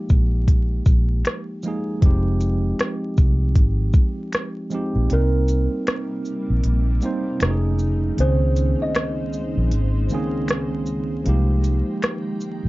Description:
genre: lo-fi hip hop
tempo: 78 BPM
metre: 4/4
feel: swing 60% on 16ths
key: F minor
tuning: A4 = 440 Hz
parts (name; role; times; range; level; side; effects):
- tine electric piano; accompaniment; 0.0-12.7 s; Db2 to C5; -25 LUFS; right 1 dB; medium stereo tremolo, low-pass filter
- vintage muted fingered electric bass; bass; 0.1-12.7 s; F1 to Db2; -19 LUFS; equal; none
- organic electronic drum kit; drums; 0.1-12.6 s; hi-hat, kick drum, rim click, shaker; -18 LUFS; equal; none
- finger snaps; percussion; 1.2-12.2 s; none; -35 LUFS; left 2 dB; none
- kalimba; melody; 5.1-10.5 s; Bb4 to Eb5; -28 LUFS; right 2 dB; low-pass filter, plate reverb
- granular cloud pad; sustained chords; 6.0-12.7 s; C3 to G5; -33 LUFS; left 1 dB; built-in reverb, low-pass filter
room: little or no reverb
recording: dark, warm production, vinyl crackle, nothing above 7.6 kHz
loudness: -18 LUFS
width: side -20 dB against mid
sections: 0.0-5.1 A section; 5.1-12.7 B section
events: kick muted 5.1-12.7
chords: 0.0 Fm11; 2.0 Fm9; 5.1 Cm7; 7.4 F7alt; 8.2 Bbm11; 11.3 Fm11

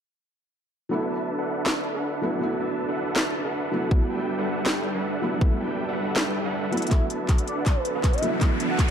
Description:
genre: future bass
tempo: 160 BPM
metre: 4/4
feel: half-time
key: D major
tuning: A4 = 439 Hz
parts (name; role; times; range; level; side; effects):
- felt-muted upright piano; accompaniment; 0.9-8.9 s; F#3 to E4; -30 LUFS; equal; sidechain pumping, dub echo
- supersaw chords; riff; 0.9-8.9 s; G3 to A5; -28 LUFS; right 1 dB; sidechain pumping, low-pass filter, dub echo
- trap drum kit; drums; 1.7-8.9 s; handclaps, hi-hat, snare drum; -28 LUFS; equal; none
- electronic kick drum; drums; 3.9-8.9 s; none; -21 LUFS; equal; none
- warm velvety synth lead; melody; 6.9-8.9 s; B4 to F#5; -30 LUFS; right 2 dB; chorus, sidechain pumping, tape echo
- shimmering ambient pad; sustained chords; 7.9-8.9 s; E3 to F#4; -32 LUFS; right 4 dB; chorus, built-in reverb, sidechain pumping
- saturated sub bass; bass; 6.9-8.9 s; D1; -46 LUFS; right 1 dB; none
- riser; sound effects; 7.6-8.9 s; none; -35 LUFS; left 2 dB; none
room: moderate lush hall reverb, RT60 2.0 s, digital ambience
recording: dark, warm production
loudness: -23 LUFS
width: side -8 dB against mid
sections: 0.9-6.9 A section; 6.9-8.9 B section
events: kick drops out 6.2-6.9; drum fill 6.7, 6.9-8.9; build-up 6.9-8.9; filter sweep on supersaw synth 6.9-8.9; filter sweep 6.9-8.9; riser 7.6-8.9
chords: 0.9 D69; 3.9 Gmaj13; 6.7 D69

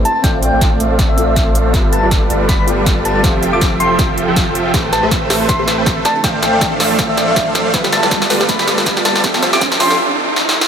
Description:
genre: future bass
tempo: 160 BPM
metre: 4/4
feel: swing 56% on 16ths, half-time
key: unclear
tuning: A4 = 445 Hz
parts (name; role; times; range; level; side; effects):
- felt-muted upright piano; accompaniment; 0.0-4.8 s; B3 to G5; -23 LUFS; left 4 dB; sidechain pumping, digital delay
- clear studio string section; sustained chords; 0.0-10.7 s; E3 to E5; -28 LUFS; right 1 dB; none
- supersaw chords; riff; 0.0-10.0 s; F3 to G5; -17 LUFS; right 1 dB; sidechain pumping, low-pass filter
- saturated sub bass; bass; 0.0-10.0 s; F1 to A1; -22 LUFS; equal; sidechain pumping
- soft struck synth lead; melody; 0.1-10.0 s; E5 to D6; -19 LUFS; equal; chorus, sidechain pumping, dub echo
- big-room dance drum kit; drums; 0.1-10.7 s; hi-hat, snare drum; -18 LUFS; equal; high-pass filter on snare, high-pass filter on hats, high-pass filter on room
- electronic kick drum; drums; 0.2-9.7 s; none; -17 LUFS; equal; none
- wide unison pluck; arpeggios; 4.7-9.9 s; G4 to A5; -24 LUFS; left 2 dB; sidechain pumping, digital delay
- riser; sound effects; 6.2-10.7 s; none; -23 LUFS; right 3 dB; none
room: moderate huge ambient reverb, RT60 4.6 s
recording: high-pass filter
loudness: -11 LUFS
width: side -8 dB against mid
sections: 0.0-10.7 A section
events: build-up 0.0-10.7; drum fill 0.0-10.0, 10.4-10.7; filter sweep on supersaw synth 0.0-10.7; filter sweep 0.0-10.7; riser 6.2-10.7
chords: 0.1 Dm9/A; 1.7 G13; 3.2 Fmaj9; 4.7 Am9; 6.1 Dm9/A; 7.7 G13; 9.2 Fmaj9

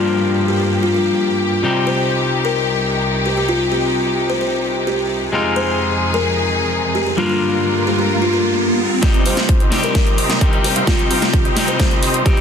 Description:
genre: EDM, festival progressive house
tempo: 130 BPM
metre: 4/4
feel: straight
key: C minor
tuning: A4 = 440 Hz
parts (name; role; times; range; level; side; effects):
- electric guitar at the edge of break-up; accompaniment; 0.0-12.4 s; G2 to G4; -21 LUFS; left 2 dB; sidechain pumping, ping-pong delay
- rich symphonic string section; sustained chords; 0.0-12.4 s; C2 to Bb4; -21 LUFS; equal; sidechain pumping
- buzzing kalimba; melody; 0.5-12.4 s; F4 to C5; -20 LUFS; left 1 dB; ping-pong delay
- riser; sound effects; 6.7-9.0 s; none; -24 LUFS; right 3 dB; none
- big supersaw lead; riff; 9.0-12.4 s; G3 to F5; -23 LUFS; right 2 dB; sidechain pumping, low-pass filter, ping-pong delay
- fat analog bass; bass; 9.0-12.4 s; none; barely audible; none; none
- big-room dance drum kit; drums; 9.0-12.4 s; hi-hat, snare drum; -20 LUFS; right 1 dB; low-pass filter on cymbals, low-pass filter on snare, low-pass filter on hats, low-pass filter on room
- electronic kick drum; drums; 9.0-12.3 s; none; -16 LUFS; equal; none
room: light reverb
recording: dense, heavily limited modern master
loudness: -14 LUFS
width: side -7 dB against mid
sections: 0.0-9.0 A section; 9.0-12.4 B section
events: riser 6.7-9.0; build-up 9.0-12.4; drum fill 9.0-12.4; filter sweep on supersaw synth 9.0-12.4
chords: 0.0 Gm7; 1.6 Cm; 5.3 Fm7; 7.2 Gm7; 9.0 Cm

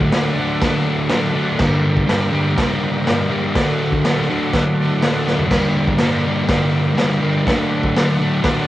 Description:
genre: garage rock duo or trio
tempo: 123 BPM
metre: 4/4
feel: straight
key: G harmonic minor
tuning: A4 = 443 Hz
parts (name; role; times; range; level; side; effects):
- combo organ; sustained chords; 0.0-8.7 s; F#4 to D5; -29 LUFS; right 1 dB; none
- crunchy overdriven guitar; riff; 0.0-8.7 s; G2 to D4; -17 LUFS; equal; cassette tape
- raw garage drum kit; drums; 0.0-8.6 s; crash cymbal, hi-hat, kick drum, snare drum, toms; -20 LUFS; equal; cassette tape
room: wet booth ambience, RT60 0.2 s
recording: home recording on cassette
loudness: -15 LUFS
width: side -14 dB against mid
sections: 0.0-8.7 A section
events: drum fill 5.3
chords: 0.0 D; 1.6 Gm; 3.5 D; 5.5 Gm; 7.5 D

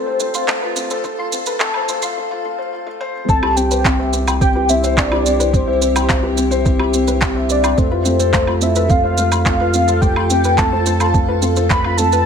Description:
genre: piano and strings electronica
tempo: 107 BPM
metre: 4/4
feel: straight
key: unclear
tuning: A4 = 440 Hz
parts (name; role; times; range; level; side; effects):
- warm velvety synth lead; melody; 0.0-12.3 s; A4 to B5; -19 LUFS; left 1 dB; chorus, tremolo
- granular cloud pad; sustained chords; 0.0-12.3 s; C4 to F5; -27 LUFS; right 1 dB; built-in reverb, sidechain pumping
- felt-muted upright piano; riff; 0.0-12.3 s; A3 to G5; -21 LUFS; left 2 dB; ping-pong delay
- soft round pluck; arpeggios; 0.1-12.2 s; C4 to C6; -26 LUFS; left 3 dB; chorus, sidechain pumping, ping-pong delay
- electronic shaker, handclaps and woodblock; drums; 0.2-12.2 s; none; -21 LUFS; right 2 dB; none
- electronic kick drum; drums; 0.5-11.8 s; none; -18 LUFS; right 1 dB; none
- round analog bass; bass; 3.3-12.2 s; C2 to F2; -20 LUFS; right 1 dB; sidechain pumping
room: light reverb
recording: high-pass filter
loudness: -14 LUFS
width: side -7 dB against mid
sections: 0.0-3.3 A section; 3.3-12.3 B section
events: build-up 0.0-3.3; filter sweep on synth arpeggio sound 0.0-3.3; filter sweep on soft synth lead 0.0-3.3; filter sweep 0.0-3.3; break 2.2-3.3; drop 3.3-12.3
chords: 0.0 F; 3.3 C; 7.8 F

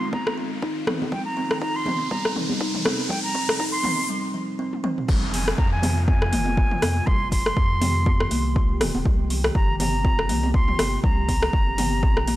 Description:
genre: afro house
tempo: 121 BPM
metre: 4/4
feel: swing 56% on 16ths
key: F minor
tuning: A4 = 440 Hz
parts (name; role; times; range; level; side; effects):
- silver concert flute; melody; 0.0-12.4 s; G5 to C6; -28 LUFS; right 1 dB; tape echo
- ethereal airy pad; sustained chords; 0.0-12.4 s; C3 to G4; -35 LUFS; equal; ensemble chorus, built-in reverb, sidechain pumping
- warm sub bass; bass; 0.0-12.4 s; Eb1 to F2; -26 LUFS; equal; sidechain pumping, high-pass filter
- riser and downlifter; sound effects; 0.0-9.1 s; none; -32 LUFS; equal; none
- kalimba; arpeggios; 0.1-12.4 s; C3 to F4; -30 LUFS; equal; sidechain pumping, tape echo
- electronic kick drum; drums; 0.1-12.1 s; none; -22 LUFS; equal; overdrive, high-pass filter on kick, studio reverb
- congas; percussion; 0.1-12.1 s; none; -31 LUFS; right 1 dB; none
- deep house drum kit; drums; 0.3-12.4 s; crash cymbal, hi-hat, rim click, toms; -27 LUFS; left 1 dB; overdrive, studio reverb
room: light reverb, studio reverb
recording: dry, gritty hardware recording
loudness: -20 LUFS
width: side -15 dB against mid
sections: 0.0-5.1 A section; 5.1-12.4 B section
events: build-up 0.0-5.1; riser 0.0-4.1; break 4.1-5.1; drum fill 4.7-5.1; drop 5.1-12.4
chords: 0.0 Fm7; 1.1 Cm; 5.1 Fm7; 9.1 Cm

